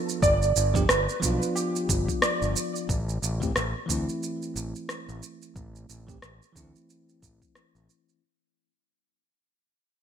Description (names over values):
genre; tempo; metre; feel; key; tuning
sunset chillout; 90 BPM; 4/4; swing 58% on 16ths; A minor; A4 = 444 Hz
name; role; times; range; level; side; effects
bell-like tine electric piano; accompaniment; 0.0-8.2 s; E3 to G4; -32 LUFS; moving between left 8 dB and right 7 dB; auto-pan, low-pass filter, digital delay
electronic shaker and rim click; drums; 0.1-8.2 s; none; -28 LUFS; right 1 dB; gated reverb
soft round pluck; arpeggios; 0.2-2.5 s; G4 to D5; -28 LUFS; right 3 dB; analog chorus, digital delay
growling fingered electric bass; bass; 0.2-7.9 s; G1 to D2; -29 LUFS; equal; overdrive
electronic kick drum; drums; 0.2-7.5 s; none; -29 LUFS; equal; none
room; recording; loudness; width
moderate plate reverb, RT60 1.5 s, digital ambience; bright 1980s-style digital production; -24 LUFS; side -8 dB against mid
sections
0.0-8.2 A section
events
fade-out 0.0-8.2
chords
0.2 G7; 2.9 Am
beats
| 0.22 0.89 1.56 2.22 | 2.89 3.56 4.22 4.89 | 5.56 6.22 6.89 7.56